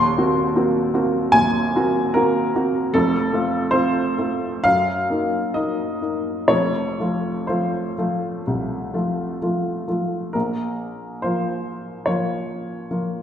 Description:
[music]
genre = classical, romantic character piece for solo piano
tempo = 60-79 BPM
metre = 4/4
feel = rubato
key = Bb minor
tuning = A4 = 440 Hz
[part]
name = warm upright piano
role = solo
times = 0.0-13.2 s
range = Eb1 to C6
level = -19 LUFS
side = equal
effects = none
[sound]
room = wet recital hall reverb, RT60 1.5 s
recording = heard from further back in the room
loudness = -19 LUFS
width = side -9 dB against mid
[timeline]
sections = 0.0-10.3 A section; 10.3-13.2 B section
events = none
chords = 0.0 Cm7b5/Eb; 2.9 F; 4.7 Ebm/Gb; 6.5 F; 10.3 Bbm

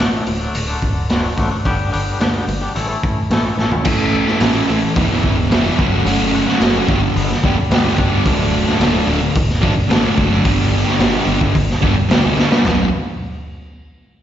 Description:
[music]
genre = quiet-loud alternative rock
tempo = 109 BPM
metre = 4/4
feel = straight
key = unclear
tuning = A4 = 437 Hz
[part]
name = twangy electric guitar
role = arpeggios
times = 0.0-8.3 s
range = D2 to A4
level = -24 LUFS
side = left 2 dB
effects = tremolo, slapback echo
[part]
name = picked electric bass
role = bass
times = 0.0-12.9 s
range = B0 to G2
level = -21 LUFS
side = equal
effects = none
[part]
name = raw garage drum kit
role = drums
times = 0.0-12.8 s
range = crash cymbal, hi-hat, kick drum, snare drum, toms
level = -17 LUFS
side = equal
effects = none
[part]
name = fuzz guitar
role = riff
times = 3.8-12.9 s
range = B1 to A4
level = -16 LUFS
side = right 1 dB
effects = distortion, slapback echo
[sound]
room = small room ambience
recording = live gig heard through the venue's PA, recital hall reverb, nothing above 7.8 kHz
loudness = -14 LUFS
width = side -10 dB against mid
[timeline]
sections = 0.0-3.9 A section; 3.9-12.6 B section; 12.6-14.2 C section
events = drum fill 3.6, 12.4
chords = 0.0 D; 1.6 G; 2.8 A; 5.0 Em; 5.8 F#m; 6.9 G; 8.3 D; 10.5 G; 12.6 B5

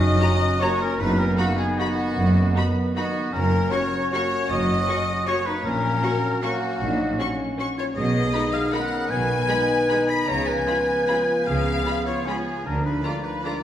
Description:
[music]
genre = classical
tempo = 154 BPM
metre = 3/4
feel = uneven beats, rubato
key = F# major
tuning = A4 = 436 Hz
[part]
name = clear clarinet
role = second line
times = 0.0-13.6 s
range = A#3 to D#5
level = -28 LUFS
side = left 1 dB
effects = none
[part]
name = mellow silver concert flute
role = second line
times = 0.0-13.6 s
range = F#5 to B6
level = -30 LUFS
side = left 1 dB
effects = none
[part]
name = rich studio violin section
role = second line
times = 0.0-13.6 s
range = F#4 to B5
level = -30 LUFS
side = left 4 dB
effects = none
[part]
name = warm oboe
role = second line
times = 0.0-13.6 s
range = F#4 to B5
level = -31 LUFS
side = equal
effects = none
[part]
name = clear trombone section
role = sustained chords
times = 0.0-13.6 s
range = D#3 to C#4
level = -32 LUFS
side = right 3 dB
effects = none
[part]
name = mellow French horn section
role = sustained chords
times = 0.0-13.6 s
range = F#3 to G#4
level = -30 LUFS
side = left 2 dB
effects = none
[part]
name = rich studio cello section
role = bass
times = 0.0-13.0 s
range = F#2 to D3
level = -28 LUFS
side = right 1 dB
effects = none
[part]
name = rich studio double bass section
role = bass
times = 0.0-13.0 s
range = F#1 to D2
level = -27 LUFS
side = right 1 dB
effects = none
[part]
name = rich studio violin section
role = melody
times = 0.2-13.5 s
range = A#5 to C#6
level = -34 LUFS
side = left 2 dB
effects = none
[part]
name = clear studio viola section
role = accompaniment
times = 0.2-13.5 s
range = G#3 to F#4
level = -35 LUFS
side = right 2 dB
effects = none
[sound]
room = wet recital hall reverb, RT60 1.8 s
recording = heard from further back in the room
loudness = -20 LUFS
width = side -11 dB against mid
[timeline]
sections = 0.0-13.6 A section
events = none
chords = 0.0 F#; 1.0 B/F#; 3.3 F#; 5.6 F#/A#; 8.0 G#m/B; 10.3 C#7; 12.7 A#7/D

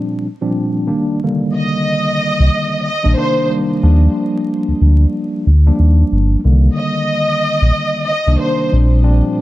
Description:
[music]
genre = hip hop, boom-bap hip-hop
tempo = 92 BPM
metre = 4/4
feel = swing 60% on 16ths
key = C minor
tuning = A4 = 440 Hz
[part]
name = mellow tine electric piano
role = accompaniment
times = 0.0-9.4 s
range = C2 to D4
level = -17 LUFS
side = equal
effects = medium stereo tremolo, cassette tape, high-pass filter, low-pass filter
[part]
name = warm symphonic violin section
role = melody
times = 1.6-8.7 s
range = C5 to Eb5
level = -18 LUFS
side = equal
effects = high-pass filter, low-pass filter
[part]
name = sub bass with octave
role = bass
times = 2.4-9.2 s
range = G1 to Eb2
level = -10 LUFS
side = equal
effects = none
[sound]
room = light reverb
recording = vinyl crackle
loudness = -12 LUFS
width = side -16 dB against mid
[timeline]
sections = 0.0-9.4 A section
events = break 0.0-1.2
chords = 0.0 Bb6; 0.9 Cm7; 3.8 Ebmaj7; 6.4 Cm7; 8.7 Bb6

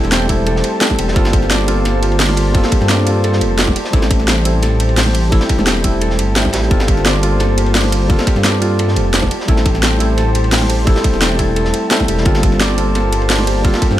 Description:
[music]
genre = liquid drum and bass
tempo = 173 BPM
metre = 4/4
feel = straight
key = G dorian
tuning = A4 = 441 Hz
[part]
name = tine electric piano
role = accompaniment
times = 0.0-14.0 s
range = G3 to A4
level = -19 LUFS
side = equal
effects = ping-pong delay
[part]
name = warm analog pad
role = sustained chords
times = 0.0-14.0 s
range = Bb3 to A5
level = -24 LUFS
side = left 1 dB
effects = lush chorus
[part]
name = concert harp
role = arpeggios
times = 0.0-14.0 s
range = E4 to G5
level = -24 LUFS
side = right 2 dB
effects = ping-pong delay
[part]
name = dark detuned saw bass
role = bass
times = 0.0-14.0 s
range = E1 to G2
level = -16 LUFS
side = equal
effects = none
[part]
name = crunchy breakbeat drum kit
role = drums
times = 0.0-14.0 s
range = hi-hat, ride cymbal, snare drum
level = -24 LUFS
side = equal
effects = high-pass filter on cymbals, small room ambience, high-pass filter on hats, high-pass filter on snare, high-pass filter on room
[part]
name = garage drum kit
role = drums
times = 0.0-14.0 s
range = hi-hat, ride cymbal, snare drum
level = -19 LUFS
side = equal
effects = overdrive, small room ambience
[part]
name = electronic kick drum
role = drums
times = 0.3-13.9 s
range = none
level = -15 LUFS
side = equal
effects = overdrive, small room ambience
[part]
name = bongos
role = percussion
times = 0.9-13.5 s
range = none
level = -24 LUFS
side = right 1 dB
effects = none
[sound]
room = little or no reverb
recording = none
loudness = -12 LUFS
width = side -13 dB against mid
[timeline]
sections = 0.0-14.0 A section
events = none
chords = 0.0 Am7; 1.2 Gm11; 3.8 Am7; 6.7 Gm11; 9.3 Am7; 12.3 Gm11

